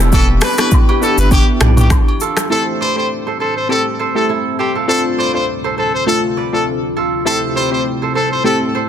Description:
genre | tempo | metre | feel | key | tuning
afrobeats | 101 BPM | 4/4 | swing 55% on 16ths | A minor | A4 = 440 Hz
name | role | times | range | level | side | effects
glassy digital keys | accompaniment | 0.0-8.6 s | A3 to G4 | -20 LUFS | left 1 dB | chorus
deep dark ambient pad | sustained chords | 0.0-8.9 s | D2 to G4 | -23 LUFS | left 1 dB | chorus, built-in reverb, sidechain pumping
kora | riff | 0.0-8.9 s | E4 to D5 | -22 LUFS | right 7 dB | tape echo
saturated sub bass | bass | 0.0-2.0 s | E1 to B1 | -13 LUFS | equal | none
afro-pop drum kit | drums | 0.0-2.5 s | finger snaps, hi-hat, kick drum, rim click, shaker, toms | -13 LUFS | equal | soft clipping on snare
brilliant trumpet | melody | 0.1-8.6 s | G4 to C5 | -18 LUFS | left 1 dB | tape echo
agogo bells and woodblock | percussion | 0.1-2.2 s | none | -26 LUFS | equal | none
room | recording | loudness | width
digital ambience | dense, heavily limited modern master | -12 LUFS | side -9 dB against mid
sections
0.0-2.5 A section; 2.5-8.9 B section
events
none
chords
0.0 Em7; 2.5 Am7; 4.9 Dm7; 7.3 Am7

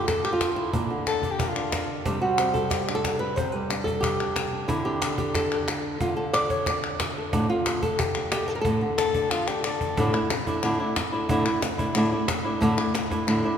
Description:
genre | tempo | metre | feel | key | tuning
flamenco | 182 BPM | 4/4 | straight | unclear | A4 = 440 Hz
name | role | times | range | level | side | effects
flamenco guitar | melody | 0.0-13.6 s | A2 to E5 | -24 LUFS | equal | none
cajon | percussion | 0.1-13.3 s | none | -31 LUFS | equal | none
palmas hand claps | percussion | 0.1-13.4 s | none | -32 LUFS | left 4 dB | none
warm soprano saxophone | second line | 1.1-2.0, 9.0-10.0 s | F4 to A4 | -29 LUFS | left 6 dB | none
room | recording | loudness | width
wet church reverb, RT60 3.5 s | recorded in a church or concert hall | -23 LUFS | side -8 dB against mid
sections
0.0-10.0 A section; 10.0-13.6 B section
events
drum fill 9.3-10.0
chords
0.0 Bb; 2.1 Csus2; 4.7 Dmadd9; 7.3 Asus4

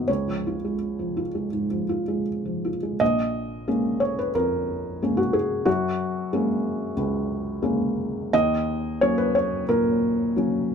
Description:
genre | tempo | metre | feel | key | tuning
neoclassical minimalist piano | 80-94 BPM | 4/4 | rubato | Bb minor from 3.0 s | A4 = 441 Hz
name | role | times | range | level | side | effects
felt-muted upright piano | solo | 0.0-10.7 s | Bb1 to Eb5 | -22 LUFS | equal | none
room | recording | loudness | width
light reverb | close, detailed microphones | -22 LUFS | side -6 dB against mid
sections
0.0-3.0 A section; 3.0-10.7 B section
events
none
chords
0.1 Db; 3.0 Bbm7; 5.7 Gbadd9; 8.3 Ebm7

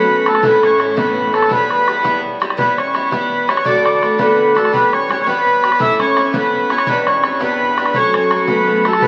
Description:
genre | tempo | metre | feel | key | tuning
celtic folk, Celtic jig | 112 BPM (dotted quarters) | 6/8 | straight | E dorian | A4 = 436 Hz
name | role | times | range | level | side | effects
accordion | melody | 0.0-9.1 s | A4 to E5 | -18 LUFS | equal | none
hammered dulcimer | second line | 0.0-9.1 s | A4 to E5 | -26 LUFS | equal | none
oud | second line | 0.0-9.1 s | A3 to E4 | -27 LUFS | equal | none
picked twelve-string acoustic guitar | accompaniment | 0.0-9.1 s | D2 to G4 | -20 LUFS | equal | none
rich cello | bass | 0.0-2.6, 6.9-9.1 s | E2 to A2 | -32 LUFS | equal | none
bodhran | percussion | 0.1-9.1 s | none | -24 LUFS | equal | none
room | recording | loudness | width
wet large studio reverb, RT60 0.9 s | very old 78 rpm record, vinyl crackle | -15 LUFS | mono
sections
0.0-2.6 A section; 2.6-9.1 A section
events
none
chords
0.4 A; 1.5 Em; 3.7 Dadd9; 4.7 Em; 5.8 Aadd9; 6.9 Em7; 7.9 F#m

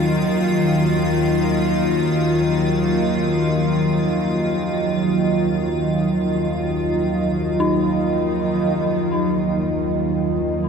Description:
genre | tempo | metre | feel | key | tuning
ambient | free time | none | none | Eb minor | A4 = 439 Hz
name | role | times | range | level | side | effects
dark analog pad | sustained chords | 0.0-10.7 s | Gb3 to Eb5 | -20 LUFS | right 2 dB | chorus
dark detuned synth bell | arpeggios | 0.0-10.7 s | Eb4 | -26 LUFS | left 5 dB | chorus, diffuse ambient delay
bowed-like drone | drone | 0.0-10.7 s | Eb2 to Eb3 | -21 LUFS | left 2 dB | built-in reverb
icy glass pad | texture | 0.0-8.8 s | F4 to F5 | -30 LUFS | left 1 dB | chorus, built-in reverb
room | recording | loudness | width
wet huge ambient reverb, RT60 8.4 s | dreamy mix soaked in reverb | -17 LUFS | side -6 dB against mid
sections
0.0-8.8 A section; 8.8-10.7 B section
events
none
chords
0.0 Ebmadd9

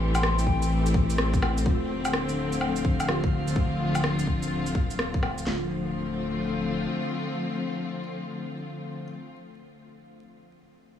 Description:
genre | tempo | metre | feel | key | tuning
future garage | 126 BPM | 4/4 | swing 64% on 16ths | D minor | A4 = 442 Hz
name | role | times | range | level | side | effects
felt-muted upright piano | accompaniment | 0.0-11.0 s | F4 to A4 | -40 LUFS | right 3 dB | sidechain pumping, tape echo
rich studio string section | sustained chords | 0.0-9.3 s | D3 to G4 | -28 LUFS | left 2 dB | vintage 12-bit sampler grit, sidechain pumping
soft dub sub bass | bass | 0.0-6.9 s | D1 to A1 | -31 LUFS | equal | sidechain pumping
mellow hollow silver concert flute | melody | 0.1-0.9 s | G5 to C6 | -36 LUFS | left 4 dB | dub echo
electronic shaker, woodblock and rim click | drums | 0.1-5.4 s | none | -31 LUFS | equal | none
garage drum kit | drums | 0.5-5.6 s | kick drum, snare drum | -25 LUFS | left 1 dB | none
drifting glass-harmonics texture | texture | 2.2-5.5 s | F5 | -42 LUFS | right 6 dB | chorus, built-in reverb
room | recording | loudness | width
light reverb, digital ambience | vinyl crackle, studio reverb | -24 LUFS | side -9 dB against mid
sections
0.0-1.7 A section; 1.7-5.5 B section; 5.5-9.3 C section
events
none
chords
0.0 Am7; 1.7 Dm7

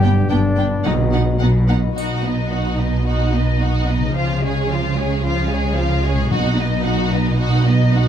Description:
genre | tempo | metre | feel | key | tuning
cinematic, heroic adventure film score | 110 BPM | 4/4 | straight | B lydian | A4 = 436 Hz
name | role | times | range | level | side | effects
dark symphonic violin section | melody | 0.0-8.1 s | C#5 to G5 | -28 LUFS | left 3 dB | none
mellow hollow silver concert flute | second line | 0.0-1.4 s | D5 to D#5 | -28 LUFS | left 2 dB | none
warm symphonic violin section | second line | 0.0-8.1 s | D4 to G#4 | -27 LUFS | left 3 dB | none
warm symphonic viola section | accompaniment | 0.0-8.1 s | E#3 to D#4 | -24 LUFS | right 3 dB | none
mellow French horn section | sustained chords | 0.0-1.7 s | B3 to F#4 | -26 LUFS | left 4 dB | none
concert harp | arpeggios | 0.0-8.1 s | G2 to B5 | -26 LUFS | left 9 dB | none
dark trumpet section | stabs | 0.0-1.4 s | D4 to G4 | -26 LUFS | left 1 dB | none
dark symphonic cello section | bass | 0.0-8.1 s | G2 to C#3 | -21 LUFS | right 2 dB | none
rich symphonic double bass section | bass | 0.0-8.1 s | G1 to C#2 | -21 LUFS | right 2 dB | none
timpani | percussion | 0.9-1.7, 6.3-7.1 s | B2 | -27 LUFS | equal | none
triangle | percussion | 2.0-3.0 s | none | -40 LUFS | left 2 dB | none
room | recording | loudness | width
moderate recital hall reverb, RT60 1.4 s | none | -16 LUFS | side -9 dB against mid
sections
0.0-2.0 A section; 2.0-8.1 B section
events
none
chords
0.0 G; 0.9 B; 4.2 C#; 6.3 B

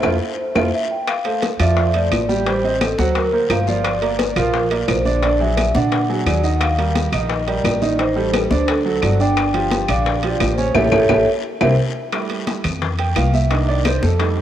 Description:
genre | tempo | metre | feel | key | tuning
Afro-Cuban jazz | 174 BPM | 4/4 | straight | D minor | A4 = 440 Hz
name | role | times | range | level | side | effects
vibraphone with soft mallets | melody | 0.0-11.7 s | A4 to G5 | -21 LUFS | equal | cassette tape
clear baby grand piano | accompaniment | 0.0-14.4 s | C#3 to G5 | -22 LUFS | right 5 dB | cassette tape
upright bass | bass | 0.0-14.4 s | G1 to Bb2 | -20 LUFS | left 1 dB | none
bongos | percussion | 0.0-14.4 s | none | -27 LUFS | left 9 dB | none
claves | percussion | 0.0-14.0 s | none | -29 LUFS | left 8 dB | none
congas | percussion | 0.0-14.4 s | none | -27 LUFS | left 2 dB | none
guiro | percussion | 0.0-14.4 s | none | -35 LUFS | left 8 dB | none
timbales | percussion | 0.0-14.4 s | none | -28 LUFS | right 7 dB | none
room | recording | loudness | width
moderate lush hall reverb, RT60 2.4 s | home recording on cassette | -16 LUFS | side -11 dB against mid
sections
0.0-1.1 A section; 1.1-12.1 B section; 12.1-14.4 C section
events
drum fill 0.0-1.1, 11.1-12.1; band accent 0.0-1.1, 10.8-12.1; grand piano solo 12.1-14.4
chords
0.0 Fmaj7; 1.1 Dm7; 2.5 Am7b5; 3.2 D7alt; 3.8 Gm7; 5.2 Bbaug7; 6.6 Ebmaj9; 8.0 Am7b5; 8.7 D; 9.4 Gm7; 10.8 A7; 11.4 C; 12.1 Fmaj7; 13.5 Cm7

